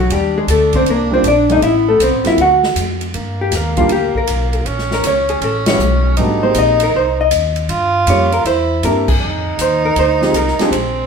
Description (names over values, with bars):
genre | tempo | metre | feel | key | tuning
jazz, small-group swing and bop | 158 BPM | 4/4 | swing 66% on 8ths | unclear | A4 = 440 Hz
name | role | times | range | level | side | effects
vintage hollow-body jazz guitar | melody | 0.0-11.1 s | F#3 to F#5 | -15 LUFS | left 1 dB | none
upright bass | bass | 0.0-11.1 s | G1 to G2 | -20 LUFS | equal | none
clear tenor saxophone | second line | 0.1-11.1 s | Bb3 to F4 | -20 LUFS | right 3 dB | none
swinging big-band drum kit | drums | 0.1-10.8 s | crash cymbal, hi-hat, kick drum, ride cymbal, snare drum | -22 LUFS | equal | none
warm grand piano | accompaniment | 1.1-10.7 s | Gb3 to G4 | -19 LUFS | right 1 dB | none
room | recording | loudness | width
wet studio reverb, RT60 0.7 s | band playing live in one room | -12 LUFS | side -6 dB against mid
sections
0.0-3.1 A section; 3.1-11.1 B section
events
band accent 5.6, 9.0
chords
0.1 Ebmaj7; 1.6 Am7; 2.4 D; 3.1 Gm; 4.7 Bbm; 5.4 A13; 6.2 Abmaj7; 7.7 Gm7b5; 8.4 C7; 9.2 Fm7